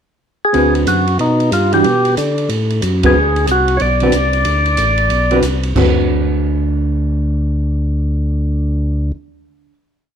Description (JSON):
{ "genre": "soul jazz organ trio", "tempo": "184 BPM", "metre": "4/4", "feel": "swing 64% on 8ths", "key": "D mixolydian", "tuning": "A4 = 438 Hz", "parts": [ { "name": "percussive tonewheel organ", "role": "melody", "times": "0.4-5.4 s", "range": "D#4 to D5", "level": "-15 LUFS", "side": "equal", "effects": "slow rotary speaker" }, { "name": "hollow-body jazz guitar", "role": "accompaniment", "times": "0.5-9.7 s", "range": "D3 to B4", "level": "-17 LUFS", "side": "right 2 dB", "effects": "none" }, { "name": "tonewheel organ", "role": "bass", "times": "0.5-9.1 s", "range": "A1 to D3", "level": "-16 LUFS", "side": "equal", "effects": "overdrive, slow rotary speaker" }, { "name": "open jazz drum kit", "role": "drums", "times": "0.5-5.9 s", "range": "crash cymbal, hi-hat, kick drum, ride cymbal, toms", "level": "-22 LUFS", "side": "right 1 dB", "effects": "none" } ], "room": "light reverb", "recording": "none", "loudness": "-13 LUFS", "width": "side -8 dB against mid", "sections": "0.0-0.5 pickup bar; 0.5-5.8 A section; 5.8-8.4 final chord", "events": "band accent 3.0", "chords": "0.0 N.C.; 0.5 D6; 1.2 B; 1.9 Bm; 2.5 Asus2; 3.2 D6" }